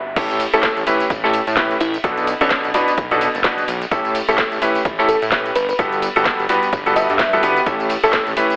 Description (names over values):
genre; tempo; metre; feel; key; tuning
piano house; 128 BPM; 4/4; swing 58% on 16ths; A mixolydian; A4 = 440 Hz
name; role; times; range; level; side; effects
fat analog bass; bass; 0.0-8.3 s; F#1 to A2; -25 LUFS; equal; tube saturation, sidechain pumping
clear grand piano; riff; 0.2-8.5 s; G2 to B4; -17 LUFS; equal; sidechain pumping, digital delay
electronic kick drum; drums; 0.2-8.2 s; none; -22 LUFS; equal; none
garage drum kit; drums; 0.2-8.6 s; crash cymbal, hi-hat, ride cymbal, snare drum, tambourine; -22 LUFS; equal; none
modern studio drum kit; drums; 0.2-8.5 s; hi-hat, ride cymbal, snare drum; -30 LUFS; equal; none
bell-like FM electric piano; melody; 0.5-8.2 s; C#4 to E5; -22 LUFS; equal; chorus, digital delay
room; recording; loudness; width
moderate plate reverb, RT60 1.2 s, studio reverb; heavily compressed radio sound, multiband compression, telephone sound; -15 LUFS; side -30 dB against mid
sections
0.2-8.6 A section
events
drop 0.2-8.6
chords
0.2 A7; 2.0 Bm7; 3.9 A7; 5.6 Gmaj9; 7.7 A7